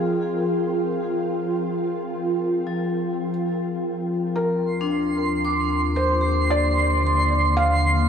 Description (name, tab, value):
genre	ambient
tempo	56 BPM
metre	4/4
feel	straight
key	unclear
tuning	A4 = 439 Hz
part	felt-muted upright piano	melody	0.0-8.1 s	Ab4 to F5	-27 LUFS	equal	diffuse ambient delay
part	ethereal airy pad	sustained chords	0.0-8.1 s	D3 to G5	-26 LUFS	equal	ensemble chorus, built-in reverb
part	vibraphone with hard mallets	arpeggios	0.0-8.1 s	F3 to D6	-26 LUFS	left 2 dB	diffuse ambient delay
part	analog drone	drone	0.0-4.5 s	F3 to F4	-31 LUFS	equal	chorus
part	warm sub bass	bass	4.4-8.1 s	Eb2	-23 LUFS	equal	none
part	twinkling granular texture	texture	4.7-8.1 s	C6	-25 LUFS	right 3 dB	built-in reverb
room	wet huge ambient reverb, RT60 8.2 s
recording	none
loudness	-20 LUFS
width	side -7 dB against mid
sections	0.0-4.4 A section; 4.4-8.1 B section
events	filter sweep on ambient pad 4.4-8.1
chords	0.0 Fmadd9; 4.4 Ebmaj9